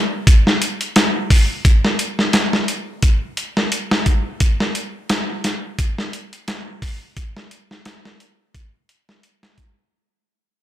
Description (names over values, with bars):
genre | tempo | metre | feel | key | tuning
trip hop | 87 BPM | 4/4 | swing 56% on 16ths | none | none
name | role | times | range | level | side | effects
dusty soul sampler-style drum kit | drums | 0.3-9.8 s | hi-hat, kick drum, snare drum | -16 LUFS | equal | none
room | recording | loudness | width
little or no reverb | none | -16 LUFS | side -12 dB against mid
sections
0.0-9.9 A section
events
fade-out 0.0-9.9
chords
none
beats
0.27 0.96 | 1.65 2.34 3.03 3.71 | 4.41 5.09 5.78 6.47 | 7.16 7.85 8.54 9.23